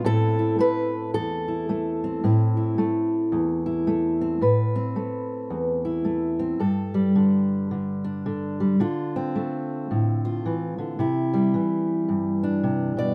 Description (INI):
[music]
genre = folk, solo fingerstyle acoustic guitar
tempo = 109 BPM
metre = 4/4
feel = swing 61% on 8ths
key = A minor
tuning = A4 = 441 Hz
[part]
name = fingerpicked steel-string acoustic guitar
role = solo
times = 0.0-13.1 s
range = E2 to D5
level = -24 LUFS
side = equal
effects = none
[sound]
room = moderate small room reverb, RT60 0.5 s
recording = dark, warm production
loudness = -24 LUFS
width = mono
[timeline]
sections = 0.0-4.4 A section; 4.4-13.1 B section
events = none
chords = 0.1 Amadd9; 6.6 Gsus2; 8.8 Dm7; 11.0 Cadd9